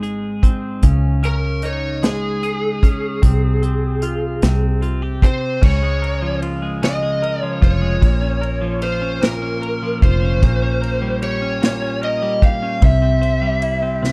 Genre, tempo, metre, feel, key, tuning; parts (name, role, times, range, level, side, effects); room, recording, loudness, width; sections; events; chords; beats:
six-eight pop ballad; 50 BPM (dotted quarters); 6/8; straight; A4 = 437 Hz
twelve-string electric guitar; accompaniment; 0.0-14.1 s; Ab2 to C5; -25 LUFS; equal
fingered electric bass; bass; 0.0-14.1 s; F1 to Db2; -22 LUFS; equal
unplugged drum kit; drums; 0.0-14.1 s; crash cymbal, hi-hat, kick drum, ride cymbal, snare drum; -17 LUFS; equal
lead guitar through a small cranked amp; melody; 1.3-14.1 s; Ab4 to F5; -25 LUFS; equal; overdrive
little or no reverb; dark, warm production; -18 LUFS; mono
0.0-5.6 A section; 5.6-14.1 B section
0.0 Ab; 0.8 Dbsus2; 3.2 Fm/C; 4.4 C5; 5.6 Db6; 8.0 Bbm; 10.4 Gdim/Bb; 12.8 C
| 0.84 2.04 | 3.23 4.43 | 5.63 6.83 | 8.03 9.22 | 10.42 11.62 | 12.82 14.03